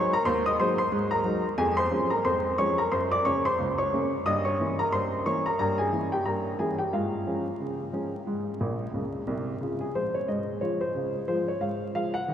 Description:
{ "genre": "ragtime piano", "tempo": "90 BPM", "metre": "2/4", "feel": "swing 57% on 16ths", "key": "Db major", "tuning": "A4 = 436 Hz", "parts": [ { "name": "warm upright piano", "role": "solo", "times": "0.0-12.3 s", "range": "Bb1 to Eb6", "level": "-25 LUFS", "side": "equal", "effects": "none" } ], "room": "wet cathedral reverb, RT60 6.7 s", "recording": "recorded in a church or concert hall, vinyl crackle", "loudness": "-25 LUFS", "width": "side -9 dB against mid", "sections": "0.0-9.6 A section; 9.6-12.3 B section", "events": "upright piano fill 8.6-9.6", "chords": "0.0 Ab7/Eb; 1.6 Db/F; 2.9 Gb; 4.3 Gdim7; 6.9 Db/Ab; 8.3 Ab; 9.6 Db" }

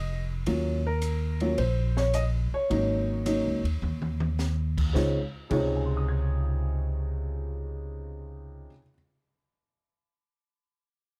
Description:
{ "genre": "jazz piano trio", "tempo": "107 BPM", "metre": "4/4", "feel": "swing 69% on 8ths", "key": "Db major", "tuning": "A4 = 440 Hz", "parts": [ { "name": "warm upright piano", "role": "melody", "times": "0.0-8.9 s", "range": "C3 to Ab6", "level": "-32 LUFS", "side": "equal", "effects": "none" }, { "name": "upright bass", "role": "bass", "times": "0.0-8.7 s", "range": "F1 to Eb2", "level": "-31 LUFS", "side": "equal", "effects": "none" }, { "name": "open jazz drum kit", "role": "drums", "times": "0.5-5.7 s", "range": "crash cymbal, hi-hat, kick drum, ride cymbal, rim click, snare drum, toms", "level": "-38 LUFS", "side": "equal", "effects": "none" } ], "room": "light reverb", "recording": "dark, warm production", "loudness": "-28 LUFS", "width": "mono", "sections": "0.0-4.9 A section; 4.9-7.2 B section", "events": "drum fill 3.8-4.4", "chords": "0.5 Ebm9; 2.7 Ab7sus4; 4.9 Dbmaj9" }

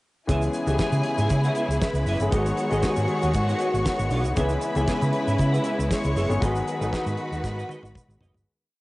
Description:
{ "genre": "disco", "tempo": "117 BPM", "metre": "4/4", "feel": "straight", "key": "C# minor", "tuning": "A4 = 440 Hz", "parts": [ { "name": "clear studio string section", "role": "second line", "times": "0.3-8.4 s", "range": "G#4 to C#6", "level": "-33 LUFS", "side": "equal", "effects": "none" }, { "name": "semi-hollow electric guitar", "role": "accompaniment", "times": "0.3-8.4 s", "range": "D#4 to F#5", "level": "-34 LUFS", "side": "right 1 dB", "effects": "analog chorus" }, { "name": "warm grand piano", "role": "accompaniment", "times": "0.3-8.5 s", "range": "E3 to G#4", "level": "-30 LUFS", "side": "left 2 dB", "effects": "none" }, { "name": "dark studio string section", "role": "sustained chords", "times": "0.3-8.5 s", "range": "C#3 to F#4", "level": "-27 LUFS", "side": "equal", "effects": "none" }, { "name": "hollow-body short-scale fingered electric bass", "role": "bass", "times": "0.3-8.4 s", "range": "F#1 to C#3", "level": "-25 LUFS", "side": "equal", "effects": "none" }, { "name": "damped 70s drum kit", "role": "drums", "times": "0.3-8.5 s", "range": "hi-hat, kick drum, snare drum, toms", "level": "-29 LUFS", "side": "equal", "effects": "cassette tape" }, { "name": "tube shaker", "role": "percussion", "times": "0.3-8.5 s", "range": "none", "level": "-45 LUFS", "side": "right 5 dB", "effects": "none" } ], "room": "studio reverb", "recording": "home recording on cassette, nothing above 10.8 kHz", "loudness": "-21 LUFS", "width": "side -19 dB against mid", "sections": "0.3-8.5 groove", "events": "fade-out 6.4-8.5; drum fill 7.4-8.5", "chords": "0.3 C#m7; 2.3 G#m7; 4.4 C#m7; 6.4 G#m7" }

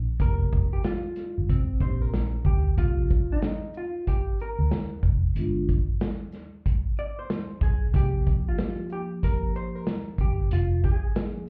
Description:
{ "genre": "hip hop, jazz-hop", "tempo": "93 BPM", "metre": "4/4", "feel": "swing 62% on 16ths", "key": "C minor", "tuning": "A4 = 440 Hz", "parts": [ { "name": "vintage muted fingered electric bass", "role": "bass", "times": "0.0-10.9 s", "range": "F1 to D2", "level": "-27 LUFS", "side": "equal", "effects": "none" }, { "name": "hollow-body jazz guitar", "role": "melody", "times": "0.2-11.5 s", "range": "C4 to D5", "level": "-37 LUFS", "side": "equal", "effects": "none" }, { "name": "vibraphone with soft mallets", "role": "accompaniment", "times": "0.2-11.5 s", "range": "F3 to Ab4", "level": "-36 LUFS", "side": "equal", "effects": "none" }, { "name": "vintage drum kit", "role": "drums", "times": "0.2-11.3 s", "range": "hi-hat, kick drum, shaker, snare drum", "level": "-28 LUFS", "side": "equal", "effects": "none" } ], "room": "little or no reverb", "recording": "heard muffled through a wall, club reverb, EQ", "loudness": "-26 LUFS", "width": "mono", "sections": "0.0-2.8 A section; 2.8-11.5 B section", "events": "none", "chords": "0.2 F9sus4; 1.5 Cm9; 2.8 Cm11; 5.4 G7b9; 7.9 Cm7; 10.5 Fm7" }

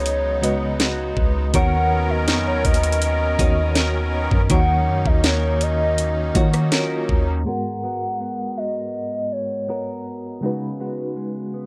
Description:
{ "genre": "contemporary R&B", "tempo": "81 BPM", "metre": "4/4", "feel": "straight", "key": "unclear", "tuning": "A4 = 440 Hz", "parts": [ { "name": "hollow clarinet-like synth lead", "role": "melody", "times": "0.0-10.1 s", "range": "Db5 to F#5", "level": "-27 LUFS", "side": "equal", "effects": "chorus, digital delay" }, { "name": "mellow FM electric piano", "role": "accompaniment", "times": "0.0-11.7 s", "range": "Ab2 to Eb5", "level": "-28 LUFS", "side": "equal", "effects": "chorus, tremolo" }, { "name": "musette accordion", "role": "sustained chords", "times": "0.0-7.4 s", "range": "Db3 to A#4", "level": "-30 LUFS", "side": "equal", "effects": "none" }, { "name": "direct-recorded clean electric guitar", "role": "arpeggios", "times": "0.0-11.7 s", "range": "Db3 to A#4", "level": "-32 LUFS", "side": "equal", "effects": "lush chorus" }, { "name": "soft 808-style bass", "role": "bass", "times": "0.0-7.5 s", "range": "Db2 to Eb3", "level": "-25 LUFS", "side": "equal", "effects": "none" }, { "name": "trap drum kit", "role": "drums", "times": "0.1-7.3 s", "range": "hi-hat, kick drum, rim click, snare drum", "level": "-22 LUFS", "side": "equal", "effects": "none" } ], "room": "little or no reverb", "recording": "low-pass filter", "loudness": "-21 LUFS", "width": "mono", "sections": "0.0-7.5 A section; 7.5-11.7 B section", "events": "none", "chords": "0.0 Db7sus4; 1.5 Bmaj9/D#; 4.5 Ebm7; 7.5 Abm9; 10.4 Db7sus4" }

